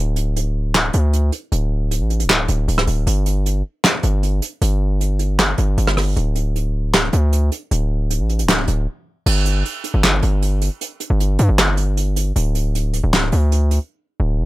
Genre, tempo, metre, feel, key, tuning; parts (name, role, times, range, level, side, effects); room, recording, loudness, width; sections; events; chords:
hip hop, trap; 155 BPM; 4/4; half-time; A4 = 438 Hz
distorted 808-style bass; bass; 0.0-14.5 s; D1 to G2; -17 LUFS; equal; distortion
soft brush drum kit; drums; 0.2-13.8 s; crash cymbal, handclaps, hi-hat, rim click, snare drum; -19 LUFS; right 1 dB
little or no reverb; -16 LUFS; side -18 dB against mid
0.0-9.3 A section; 9.3-14.5 B section
break 8.9-9.3, 13.9-14.5